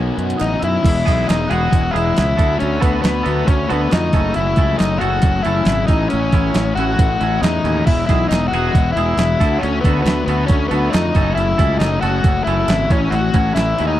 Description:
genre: indie rock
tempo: 137 BPM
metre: 4/4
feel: straight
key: E major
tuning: A4 = 440 Hz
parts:
  - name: thick fuzz guitar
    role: riff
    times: 0.0-14.0 s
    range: E2 to C#5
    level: -23 LUFS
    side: left 7 dB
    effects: distortion
  - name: twangy electric guitar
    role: riff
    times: 0.0-14.0 s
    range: A2 to A4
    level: -26 LUFS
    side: right 6 dB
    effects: wide subtle chorus, slapback echo
  - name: fuzz fingered electric bass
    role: bass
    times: 0.0-14.0 s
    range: E1 to F#2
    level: -20 LUFS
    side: right 1 dB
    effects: overdrive
  - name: crisp 8-bit digital drum machine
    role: drums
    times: 0.2-13.9 s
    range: crash cymbal, hi-hat, kick drum, snare drum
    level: -16 LUFS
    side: right 1 dB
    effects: overdrive
  - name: octave-fuzz lead guitar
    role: melody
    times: 0.4-14.0 s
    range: B3 to F#4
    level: -20 LUFS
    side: left 3 dB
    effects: distortion, slapback echo
  - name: glockenspiel with rubber mallets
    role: second line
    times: 0.4-14.0 s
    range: B5 to F#6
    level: -30 LUFS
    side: right 13 dB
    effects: none
  - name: group handclap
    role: percussion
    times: 0.4-13.7 s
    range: none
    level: -35 LUFS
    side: right 11 dB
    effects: none
room: little or no reverb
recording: dry, close 1970s-style studio recording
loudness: -14 LUFS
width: side -13 dB against mid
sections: 0.8-14.0 A section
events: kick and snare drop out 0.4-0.8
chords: 0.0 Badd9; 0.8 Emaj7; 2.4 D6; 4.1 F#m7; 5.9 A6; 7.9 Emaj7; 9.4 D6; 11.2 F#m7; 12.9 A6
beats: 0.40 | 0.84 1.28 1.73 2.17 | 2.61 3.05 3.49 3.93 | 4.37 4.81 5.25 5.68 | 6.12 6.56 7.00 7.44 | 7.88 8.31 8.75 9.19 | 9.63 10.06 10.50 10.94 | 11.38 11.81 12.25 12.69 | 13.13 13.57

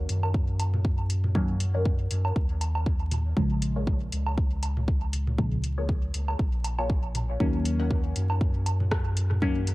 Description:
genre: dub techno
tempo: 119 BPM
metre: 4/4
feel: swing 56% on 16ths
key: Eb minor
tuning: A4 = 445 Hz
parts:
  - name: deep mellow chord stab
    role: stabs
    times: 0.0-9.6 s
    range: Bb2 to Db4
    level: -31 LUFS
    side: left 1 dB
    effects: chorus, phaser, sidechain pumping, dub echo
  - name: warm sub bass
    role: bass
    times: 0.0-9.7 s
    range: Bb1 to Gb2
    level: -27 LUFS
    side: equal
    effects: tube saturation, sidechain pumping
  - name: soft vintage rhythm box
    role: drums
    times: 0.1-9.7 s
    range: hi-hat, rim click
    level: -35 LUFS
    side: left 1 dB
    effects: dub echo
  - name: electronic woodblock and toms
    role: percussion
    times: 0.2-9.4 s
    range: none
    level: -36 LUFS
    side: right 2 dB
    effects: sidechain pumping on perc, sidechain pumping on toms, dub echo
  - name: electronic kick drum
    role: drums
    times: 0.3-9.5 s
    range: none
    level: -27 LUFS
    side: equal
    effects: none
  - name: filtered dub chord stab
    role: riff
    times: 1.7-8.0 s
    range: Bb3 to Gb5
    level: -38 LUFS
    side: left 2 dB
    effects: phaser, analog chorus, sidechain pumping, dub echo
room: little or no reverb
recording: echo-heavy mix, vinyl crackle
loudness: -24 LUFS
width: side -19 dB against mid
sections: 0.0-9.7 A section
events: none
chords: 0.0 Ebm7; 3.4 Bbm7; 7.4 Ebm7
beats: 0.34 0.85 | 1.35 1.85 2.36 2.86 | 3.37 3.87 4.38 4.88 | 5.38 5.89 6.39 6.90 | 7.40 7.91 8.41 8.91 | 9.42

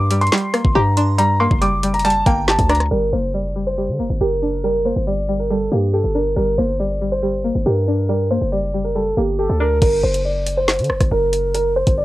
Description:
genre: hip hop, drill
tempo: 139 BPM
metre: 4/4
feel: half-time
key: G harmonic minor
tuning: A4 = 440 Hz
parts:
  - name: warm baby grand piano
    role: melody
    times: 0.0-12.0 s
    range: G4 to D6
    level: -20 LUFS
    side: right 1 dB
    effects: low-pass filter
  - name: string-like resonator pluck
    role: accompaniment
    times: 0.0-9.8 s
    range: G3 to G4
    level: -22 LUFS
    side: equal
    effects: chorus, phaser
  - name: hard-hitting 808-style bass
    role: bass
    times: 0.0-12.0 s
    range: F#1 to D3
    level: -20 LUFS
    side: equal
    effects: none
  - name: drill drum kit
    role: drums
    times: 0.1-2.9, 9.8-12.0 s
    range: crash cymbal, hi-hat, kick drum, rim click, snare drum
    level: -20 LUFS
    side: equal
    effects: none
  - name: delicate synth tine bell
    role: second line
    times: 1.0-2.9 s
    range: Bb5 to C6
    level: -31 LUFS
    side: right 8 dB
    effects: chorus, analog delay
room: little or no reverb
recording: home recording on cassette, low-pass filter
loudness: -16 LUFS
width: side -16 dB against mid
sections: 0.0-2.9 A section; 2.9-9.8 B section; 9.8-12.0 C section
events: filter sweep 2.9-9.8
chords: 0.0 Gm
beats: 0.32 0.75 | 1.19 1.62 2.05 2.48 | 2.91 3.34 3.77 4.21 | 4.64 5.07 5.50 5.93 | 6.37 6.80 7.23 7.66 | 8.09 8.52 8.96 9.39 | 9.82 10.25 10.68 11.11 | 11.54 11.98

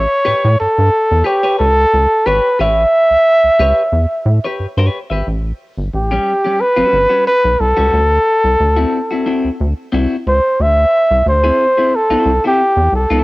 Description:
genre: funk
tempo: 90 BPM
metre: 4/4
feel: straight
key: unclear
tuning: A4 = 441 Hz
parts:
  - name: breathy trumpet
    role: melody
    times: 0.0-13.2 s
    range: G4 to E5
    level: -12 LUFS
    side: equal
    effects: cassette tape
  - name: rubbery square bass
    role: bass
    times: 0.0-13.2 s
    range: G1 to A2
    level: -15 LUFS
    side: equal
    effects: transformer saturation
  - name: clean electric guitar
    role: accompaniment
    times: 0.2-13.2 s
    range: G3 to E5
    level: -20 LUFS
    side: left 2 dB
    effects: wide subtle chorus, cassette tape
room: small room reverb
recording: home recording on cassette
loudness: -11 LUFS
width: side -20 dB against mid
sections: 0.0-5.3 A section; 5.3-13.2 B section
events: none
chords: 0.0 A9; 5.3 A13; 7.9 D9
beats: 0.59 1.26 1.93 | 2.60 3.26 3.93 4.60 | 5.26 5.93 6.60 7.26 | 7.93 8.60 9.26 9.93 | 10.60 11.26 11.93 12.60

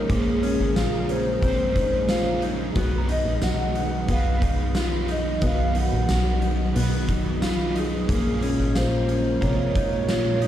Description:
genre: dream pop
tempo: 90 BPM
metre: 4/4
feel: straight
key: unclear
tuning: A4 = 440 Hz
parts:
  - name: warbly nostalgic lead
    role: melody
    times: 0.0-10.5 s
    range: Ab4 to Gb5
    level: -28 LUFS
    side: equal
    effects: chorus, tape echo
  - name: overdriven semi-hollow guitar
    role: accompaniment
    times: 0.0-10.5 s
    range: Bb2 to C5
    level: -32 LUFS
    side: right 3 dB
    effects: harmonic tremolo, analog chorus
  - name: ensemble organ-string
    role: sustained chords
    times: 0.0-10.5 s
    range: Bb2 to Cb4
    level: -28 LUFS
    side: equal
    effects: ensemble chorus
  - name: mellow electric guitar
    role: arpeggios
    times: 0.0-10.5 s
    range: C3 to Gb4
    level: -29 LUFS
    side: left 2 dB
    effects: lush chorus, tape echo
  - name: plucky analog bass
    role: bass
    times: 0.0-10.5 s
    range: Ab1 to Cb2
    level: -26 LUFS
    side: equal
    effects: none
  - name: oversized low-tuned drum kit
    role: drums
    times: 0.1-10.5 s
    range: hi-hat, kick drum, snare drum, tambourine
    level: -28 LUFS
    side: equal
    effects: none
  - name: soft synth bell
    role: texture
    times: 2.8-4.7, 9.4-10.5 s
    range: Gb4 to Eb6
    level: -39 LUFS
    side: left 2 dB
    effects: none
room: moderate concert hall reverb, RT60 2.0 s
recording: played on a big sound system in a bare room, large studio reverb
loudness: -20 LUFS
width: side -11 dB against mid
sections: 0.0-10.5 A section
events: none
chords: 0.0 Bbm9; 2.8 Cb6; 8.1 Bbm9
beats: | 0.09 0.76 1.43 2.09 | 2.76 3.43 4.09 4.76 | 5.43 6.09 6.76 7.43 | 8.09 8.76 9.43 10.09

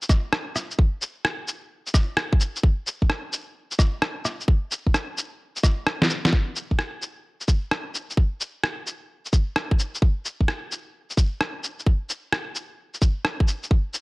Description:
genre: future garage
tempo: 130 BPM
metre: 4/4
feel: swing 67% on 16ths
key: none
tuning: none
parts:
  - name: electronic shaker, rim click and snare drum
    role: drums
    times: 0.0-14.0 s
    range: none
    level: -24 LUFS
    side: equal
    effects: none
  - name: electronic kick drum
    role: drums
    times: 0.1-13.8 s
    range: none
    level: -19 LUFS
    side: equal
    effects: none
room: digital ambience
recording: dry, gritty hardware recording, cassette tape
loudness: -22 LUFS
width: side -25 dB against mid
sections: 0.0-6.3 A section; 6.3-14.0 B section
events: kick drops out 5.9-6.3; drum fill 6.0-6.3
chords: none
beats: 0.33 | 0.79 1.25 1.71 2.17 | 2.63 3.10 3.56 4.02 | 4.48 4.94 5.40 5.87 | 6.33 6.79 7.25 7.71 | 8.17 8.63 9.10 9.56 | 10.02 10.48 10.94 11.40 | 11.87 12.33 12.79 13.25 | 13.71

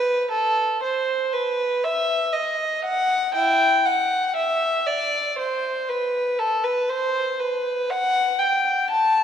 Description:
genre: classical, baroque-style suite movement for unaccompanied violin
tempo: 59 BPM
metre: 3/4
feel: rubato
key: E minor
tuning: A4 = 440 Hz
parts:
  - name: dark violin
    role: solo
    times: 0.0-9.2 s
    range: E4 to A5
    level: -20 LUFS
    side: equal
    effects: none
room: wet church reverb, RT60 2.7 s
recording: minimal, uncompressed stereo recording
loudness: -20 LUFS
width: side -8 dB against mid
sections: 0.0-9.2 A section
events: none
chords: none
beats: | 0.28 1.31 2.32 | 3.35 4.36 5.37 | 6.39 7.40 8.39

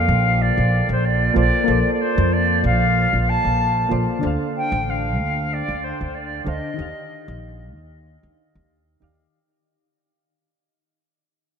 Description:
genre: sunset chillout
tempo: 94 BPM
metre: 4/4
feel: swing 55% on 16ths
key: unclear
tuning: A4 = 440 Hz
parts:
  - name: silver concert flute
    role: melody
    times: 0.0-7.4 s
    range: C5 to A5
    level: -22 LUFS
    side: right 1 dB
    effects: diffuse ambient delay
  - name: soft electric-piano-like synth keys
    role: accompaniment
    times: 0.0-9.4 s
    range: D3 to F5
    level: -25 LUFS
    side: left 1 dB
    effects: chorus, auto-pan, diffuse ambient delay
  - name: upright bass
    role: bass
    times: 0.0-9.3 s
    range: A1 to F2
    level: -21 LUFS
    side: equal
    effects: tube saturation
room: wet cathedral reverb, RT60 6.6 s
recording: dreamy mix soaked in reverb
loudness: -17 LUFS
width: side -7 dB against mid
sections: 0.0-9.3 A section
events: fade-out 2.5-9.3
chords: 0.0 Bbmaj7; 4.2 Dm7; 6.8 Ebmaj9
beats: 0.40 1.04 | 1.68 2.32 2.96 3.60 | 4.23 4.87 5.51 6.15 | 6.79 7.42 8.06 8.70

